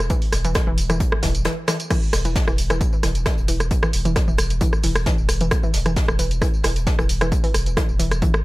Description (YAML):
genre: driving peak-time techno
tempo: 133 BPM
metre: 4/4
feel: straight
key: unclear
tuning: A4 = 440 Hz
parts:
  - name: saturated sub bass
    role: bass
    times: 0.0-8.2 s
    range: E1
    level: -23 LUFS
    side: equal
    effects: overdrive, sidechain pumping, low-pass filter
  - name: wide unison pluck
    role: riff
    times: 0.1-8.2 s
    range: E3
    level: -27 LUFS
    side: equal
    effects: cassette tape, sidechain pumping, digital delay
  - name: electronic kick drum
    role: drums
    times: 0.1-8.3 s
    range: none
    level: -21 LUFS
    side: equal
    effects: none
  - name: jazz brush drum kit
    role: drums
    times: 0.1-8.3 s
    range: hi-hat, snare drum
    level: -32 LUFS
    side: left 2 dB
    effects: high-pass filter on hats, high-pass filter on snare, high-pass filter on room
  - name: punchy analog drum machine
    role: drums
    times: 0.1-8.4 s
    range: crash cymbal, hi-hat, rim click, tambourine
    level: -25 LUFS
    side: right 1 dB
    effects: none
room: digital ambience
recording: none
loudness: -18 LUFS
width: side -20 dB against mid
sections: 0.0-1.9 A section; 1.9-8.4 A section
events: drop 0.0-1.9, 1.9-8.4; break 1.5-1.9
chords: none